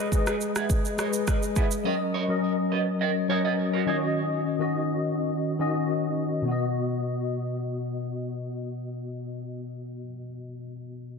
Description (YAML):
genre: afrobeats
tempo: 104 BPM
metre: 4/4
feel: straight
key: B major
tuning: A4 = 440 Hz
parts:
  - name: mellow tine electric piano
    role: accompaniment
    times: 0.0-11.2 s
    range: B2 to D#5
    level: -26 LUFS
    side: left 2 dB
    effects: ensemble chorus
  - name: electric guitar at the edge of break-up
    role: riff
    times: 0.0-4.0 s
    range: E4 to D#5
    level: -31 LUFS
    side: right 7 dB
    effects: phaser, digital delay
  - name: afro-pop drum kit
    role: drums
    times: 0.1-1.8 s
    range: kick drum, rim click, shaker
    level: -26 LUFS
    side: right 1 dB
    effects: soft clipping on snare
room: moderate plate reverb, RT60 2.1 s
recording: dense, heavily limited modern master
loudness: -25 LUFS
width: side -5 dB against mid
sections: 0.0-6.5 A section; 6.5-8.8 B section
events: none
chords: 0.0 G#m; 1.9 F#6; 3.9 D#m7; 6.5 B